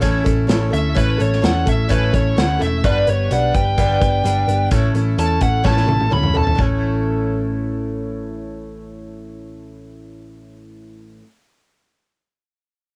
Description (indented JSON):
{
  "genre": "folk rock and heartland rock",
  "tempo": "128 BPM",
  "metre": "4/4",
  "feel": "straight",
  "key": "A major",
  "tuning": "A4 = 441 Hz",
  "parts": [
    { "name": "picked twelve-string acoustic guitar", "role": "accompaniment", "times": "0.0-11.3 s", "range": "G2 to B4", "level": "-24 LUFS", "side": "equal", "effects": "cassette tape" },
    { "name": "hollow-body short-scale picked electric bass", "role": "bass", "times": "0.0-11.2 s", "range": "E1 to E2", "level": "-23 LUFS", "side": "equal", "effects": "none" },
    { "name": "natural country drum kit", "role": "drums", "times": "0.0-6.7 s", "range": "hi-hat, kick drum, snare drum, toms", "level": "-22 LUFS", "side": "equal", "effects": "none" },
    { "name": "bluesy overdriven lead guitar", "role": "melody", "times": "0.7-6.6 s", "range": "B4 to B5", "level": "-24 LUFS", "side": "equal", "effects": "distortion, cassette tape" }
  ],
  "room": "light reverb",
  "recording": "home recording on cassette",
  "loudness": "-18 LUFS",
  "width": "mono",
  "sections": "0.0-6.6 A section; 6.6-10.3 B section",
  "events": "lead electric guitar solo 0.0-6.6; drum fill 5.6-6.6",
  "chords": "0.0 A; 2.8 G; 4.7 A",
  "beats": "0.02 0.49 | 0.96 1.43 1.89 2.36 | 2.83 3.30 3.77 4.24 | 4.70 5.17 5.64 6.11 | 6.58 7.05 7.52 7.99 | 8.46 8.93 9.40 9.87"
}